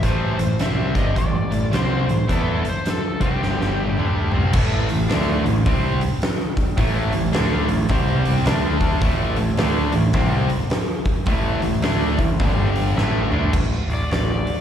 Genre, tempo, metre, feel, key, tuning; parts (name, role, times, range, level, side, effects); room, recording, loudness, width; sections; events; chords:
blues rock power trio and southern rock; 107 BPM; 4/4; swing 63% on 8ths; A minor; A4 = 440 Hz
overdriven slide guitar; melody; 0.0-4.3, 13.9-14.6 s; G4 to E5; -28 LUFS; left 3 dB; slapback echo
sludgy distorted guitar; riff; 0.0-13.5 s; G2 to E4; -22 LUFS; equal; overdrive, slapback echo
growling picked electric bass; bass; 0.0-14.5 s; G1 to E2; -23 LUFS; equal; overdrive
oversized low-tuned drum kit; drums; 0.0-14.6 s; crash cymbal, hi-hat, kick drum, snare drum, toms; -22 LUFS; equal
light reverb, studio reverb; live gig heard through the venue's PA, recital hall reverb; -18 LUFS; side -9 dB against mid
0.0-4.5 A section; 4.5-13.5 B section; 13.5-14.6 C section
drum fill 3.4-4.5, 13.0-13.5; electric slide guitar solo 13.5-14.6
0.0 Am; 3.4 G5; 4.0 Am; 7.9 C5; 8.5 D5; 9.0 Am; 12.4 G5; 13.0 A5; 13.5 N.C.